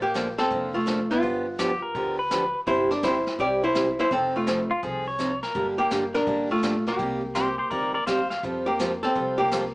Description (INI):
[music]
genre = country, western swing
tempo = 167 BPM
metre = 4/4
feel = swing 65% on 8ths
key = unclear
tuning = A4 = 439 Hz
[part]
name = archtop guitar, miked and amplified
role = melody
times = 0.0-9.7 s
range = A3 to D5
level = -24 LUFS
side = equal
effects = none
[part]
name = upright bass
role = bass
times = 0.0-9.7 s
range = F1 to F2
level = -40 LUFS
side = equal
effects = none
[part]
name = picked steel-string acoustic guitar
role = accompaniment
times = 0.1-9.6 s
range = C3 to A4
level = -28 LUFS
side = right 1 dB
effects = none
[part]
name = vintage brush drum kit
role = drums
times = 0.1-9.7 s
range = brushed snare drum, hi-hat, kick drum, snare drum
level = -35 LUFS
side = equal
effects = none
[part]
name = pedal steel guitar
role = second line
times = 1.6-8.4 s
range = F4 to F5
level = -26 LUFS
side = left 1 dB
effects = none
[sound]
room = moderate small room reverb, RT60 0.5 s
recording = band playing live in one room, small speaker sound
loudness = -22 LUFS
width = side -22 dB against mid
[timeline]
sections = 0.0-9.7 A section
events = none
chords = 0.0 Bbmaj7; 1.2 G7; 2.7 C/G; 4.1 F7; 5.6 Gm; 7.0 Cm7; 8.4 Fadd9